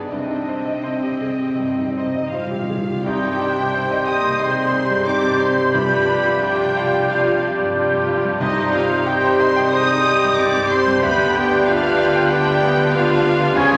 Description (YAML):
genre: classical, romantic movement for piano and orchestra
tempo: 79-96 BPM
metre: 4/4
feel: rubato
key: C minor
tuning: A4 = 440 Hz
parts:
  - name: bright grand piano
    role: melody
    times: 0.0-13.8 s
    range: C2 to C6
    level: -26 LUFS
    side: equal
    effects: none
  - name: warm studio violin section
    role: melody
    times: 0.0-13.8 s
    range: Eb5 to Eb6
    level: -32 LUFS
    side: equal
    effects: none
  - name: rich studio violin section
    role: second line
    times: 0.0-13.8 s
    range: D5 to Eb6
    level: -30 LUFS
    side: equal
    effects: none
  - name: warm clarinet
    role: second line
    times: 0.0-13.8 s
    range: C4 to F4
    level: -30 LUFS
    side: equal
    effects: none
  - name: rich studio viola section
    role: accompaniment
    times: 0.0-13.8 s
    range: Db3 to Ab4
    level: -28 LUFS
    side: equal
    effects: none
  - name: rich studio cello section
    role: bass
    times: 0.0-13.8 s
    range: C3 to D3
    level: -32 LUFS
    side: equal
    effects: none
  - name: timpani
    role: percussion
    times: 0.1-9.4 s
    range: C3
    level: -33 LUFS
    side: equal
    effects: none
  - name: mellow trumpet section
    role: stabs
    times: 2.0-13.8 s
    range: Eb4 to Eb5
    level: -26 LUFS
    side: equal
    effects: none
  - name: mellow cor anglais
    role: second line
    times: 3.0-13.8 s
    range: B4 to D5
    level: -30 LUFS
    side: equal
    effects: none
  - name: mellow hollow flute section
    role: second line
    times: 3.0-13.8 s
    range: G6 to Ab6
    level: -25 LUFS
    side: equal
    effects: none
  - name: mellow bassoon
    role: accompaniment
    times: 3.0-13.8 s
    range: F3 to G3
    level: -30 LUFS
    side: equal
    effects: none
  - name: warm trombone section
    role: sustained chords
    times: 3.0-13.8 s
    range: Db3 to Ab3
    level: -32 LUFS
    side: equal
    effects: none
  - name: clear chamber double bass section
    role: bass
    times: 3.0-13.8 s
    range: C2 to D2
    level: -35 LUFS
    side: equal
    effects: none
  - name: mellow French horn section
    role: sustained chords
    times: 3.1-13.8 s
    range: B3 to G4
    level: -27 LUFS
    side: equal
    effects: none
room: wet concert hall reverb, RT60 1.8 s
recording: none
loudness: -18 LUFS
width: mono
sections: 0.0-3.0 A section; 3.0-13.8 B section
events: timpani fill 0.1-3.0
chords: 0.1 Cm; 5.7 G7/C; 8.4 Cm; 11.0 G7/D